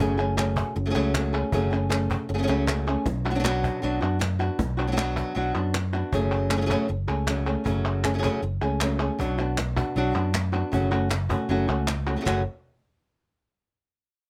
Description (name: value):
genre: flamenco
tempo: 156 BPM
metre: 4/4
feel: straight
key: F# minor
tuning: A4 = 442 Hz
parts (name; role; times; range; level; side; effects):
- flamenco guitar; melody; 0.0-12.4 s; F#2 to G#4; -28 LUFS; equal; none
- fingered electric bass; bass; 0.0-12.4 s; F#1 to F#2; -29 LUFS; equal; none
- cajon; percussion; 0.2-12.4 s; none; -35 LUFS; equal; none
- palmas hand claps; percussion; 0.2-12.4 s; none; -34 LUFS; equal; none
room: little or no reverb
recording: close, detailed microphones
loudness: -25 LUFS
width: mono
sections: 0.0-12.3 A section; 12.3-13.8 B section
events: none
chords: 0.0 F#madd9; 3.1 Bm; 6.1 F#madd9; 9.2 Bm; 10.7 F#m; 12.3 N.C.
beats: | 0.00 0.38 0.76 1.15 | 1.53 1.91 2.29 2.68 | 3.06 3.44 3.83 4.21 | 4.59 4.97 5.36 5.74 | 6.12 6.51 6.89 7.28 | 7.66 8.04 8.43 8.81 | 9.19 9.58 9.96 10.34 | 10.73 11.11 11.50 11.88 | 12.26